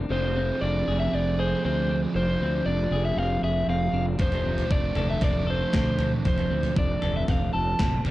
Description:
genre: indie rock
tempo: 117 BPM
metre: 4/4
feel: straight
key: unclear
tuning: A4 = 441 Hz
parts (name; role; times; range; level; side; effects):
- clean electric guitar; riff; 0.0-8.1 s; F3 to A4; -34 LUFS; left 4 dB; none
- fuzz guitar; riff; 0.0-8.1 s; F2 to Ab4; -30 LUFS; right 4 dB; distortion, analog chorus, slapback echo
- fuzz fingered electric bass; bass; 0.0-8.1 s; F1 to D2; -28 LUFS; equal; overdrive
- crunchy overdriven guitar; melody; 0.1-8.0 s; C5 to A5; -29 LUFS; left 1 dB; slapback echo
- gated 80s digital drum machine; drums; 4.2-8.1 s; kick drum, snare drum, toms; -26 LUFS; equal; gated reverb, gated reverb snare
room: light reverb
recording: dark, warm production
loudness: -22 LUFS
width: side -16 dB against mid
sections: 0.0-8.1 A section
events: none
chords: 0.1 Fm6; 4.2 Dm7/F

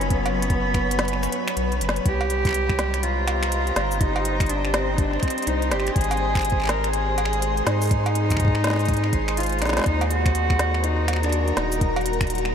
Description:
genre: IDM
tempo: 123 BPM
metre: 4/4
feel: swing 62% on 16ths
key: C minor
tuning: A4 = 440 Hz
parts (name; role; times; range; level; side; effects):
- warm cello; melody; 0.0-12.1 s; B3 to Bb4; -26 LUFS; equal; vintage 12-bit sampler grit, diffuse ambient delay
- granular cloud pad; sustained chords; 0.0-12.5 s; Gb3 to C6; -28 LUFS; equal; built-in reverb
- round analog bass; bass; 0.0-12.5 s; Eb1 to Ab2; -25 LUFS; equal; tube saturation
- organic electronic drum kit; drums; 0.0-12.5 s; cabasa, cowbell, finger snaps, hi-hat, snare drum; -28 LUFS; equal; none
- electronic kick drum; drums; 0.1-12.3 s; none; -23 LUFS; equal; none
room: moderate huge ambient reverb, RT60 7.7 s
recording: dreamy mix soaked in reverb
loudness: -20 LUFS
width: side -8 dB against mid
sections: 0.0-12.5 A section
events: break 1.1-2.1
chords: 0.0 Bsus2; 2.1 Cm7; 6.0 Ab; 9.9 Ebm

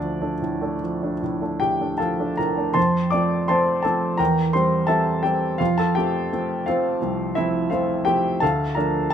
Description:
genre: classical, romantic character piece for solo piano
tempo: 73-87 BPM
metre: 4/4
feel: rubato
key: F major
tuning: A4 = 440 Hz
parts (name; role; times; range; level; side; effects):
- clear grand piano; solo; 0.0-9.1 s; C2 to D6; -20 LUFS; equal; none
room: light reverb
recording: minimal, uncompressed stereo recording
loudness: -20 LUFS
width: side -8 dB against mid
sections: 0.0-2.8 A section; 2.8-9.1 B section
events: none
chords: 0.0 Dm; 2.8 F; 4.2 C7/E; 5.6 F; 8.4 Dm

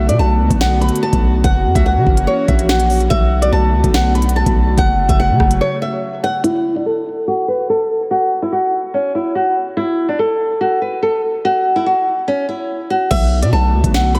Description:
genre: hip hop, drill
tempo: 144 BPM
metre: 4/4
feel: half-time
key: B minor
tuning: A4 = 445 Hz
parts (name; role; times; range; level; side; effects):
- flamenco guitar; melody; 0.0-14.2 s; C#4 to B5; -19 LUFS; equal; low-pass filter, analog delay
- airy breathy pad; sustained chords; 0.0-6.4, 13.1-14.2 s; C#3 to F#4; -23 LUFS; equal; chorus
- long sustained 808-style bass; bass; 0.0-5.6, 13.1-14.2 s; F#1 to C#3; -18 LUFS; equal; none
- drill drum kit; drums; 0.1-6.5, 13.1-14.2 s; crash cymbal, hi-hat, kick drum, rim click, snare drum; -19 LUFS; equal; none
room: moderate church reverb, RT60 3.0 s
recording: dreamy mix soaked in reverb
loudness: -16 LUFS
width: mono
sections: 0.0-6.4 A section; 6.4-13.1 B section; 13.1-14.2 A section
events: break 5.6-6.4; filter sweep on nylon-string guitar 6.4-13.1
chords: 0.0 Bm7; 1.4 F#7; 3.1 Bm7; 4.8 F#m; 6.4 N.C.; 13.1 Bm7

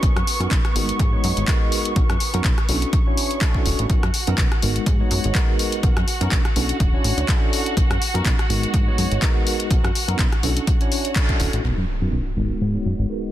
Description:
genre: filtered disco house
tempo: 124 BPM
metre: 4/4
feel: swing 55% on 16ths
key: B major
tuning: A4 = 439 Hz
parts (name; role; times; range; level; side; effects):
- barky tine electric piano; accompaniment; 0.0-13.3 s; G#3 to C#5; -26 LUFS; equal; medium stereo tremolo, phaser, vintage 12-bit sampler grit, sidechain pumping, low-pass filter
- rich chamber violin section; sustained chords; 0.0-13.3 s; B3 to C#6; -30 LUFS; right 3 dB; sidechain pumping, low-pass filter
- plucky analog bass; bass; 0.0-13.1 s; D1 to G#2; -23 LUFS; equal; sidechain pumping, low-pass filter
- electronic kick drum; drums; 0.0-11.4 s; none; -20 LUFS; equal; none
- house drum kit; drums; 0.0-11.6 s; handclaps, hi-hat, rim click; -26 LUFS; left 2 dB; sidechain pumping on hats
- impact; sound effects; 11.6-13.3 s; none; -29 LUFS; equal; none
room: little or no reverb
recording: dense, heavily limited modern master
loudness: -18 LUFS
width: side -13 dB against mid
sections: 0.0-11.6 A section; 11.6-13.3 B section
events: band accent 11.2; impact 11.6-13.3; filter sweep 11.6-13.3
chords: 0.0 Bmaj9; 0.8 G#m7; 2.0 Bmaj9; 2.9 Dmaj7; 3.9 Bmaj9; 4.6 G#m7; 5.8 Bmaj9; 6.8 Dmaj7; 7.8 Bmaj9; 8.5 G#m7; 9.7 Bmaj9; 10.7 Dmaj7; 11.6 Bmaj9; 12.4 G#m7

